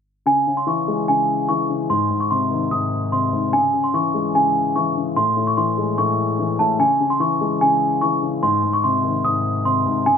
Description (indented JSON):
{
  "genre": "hip hop",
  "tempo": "147 BPM",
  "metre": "4/4",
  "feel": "half-time",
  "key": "C# harmonic minor",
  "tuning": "A4 = 442 Hz",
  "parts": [
    { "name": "worn celesta", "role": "melody", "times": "0.3-10.2 s", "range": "G#5 to D#6", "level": "-19 LUFS", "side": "right 2 dB", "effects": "low-pass filter" },
    { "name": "dark grand piano", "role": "accompaniment", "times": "0.3-10.2 s", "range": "G#2 to G#3", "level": "-21 LUFS", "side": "left 5 dB", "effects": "low-pass filter" }
  ],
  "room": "moderate concert hall reverb, RT60 2.0 s",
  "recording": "low-pass filter",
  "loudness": "-17 LUFS",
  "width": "side -7 dB against mid",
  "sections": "0.3-10.2 A section",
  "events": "filter sweep 0.3-10.2",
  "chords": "0.3 C#m; 1.9 G#; 3.5 C#m; 5.2 Amaj7; 6.8 C#m; 8.4 G#"
}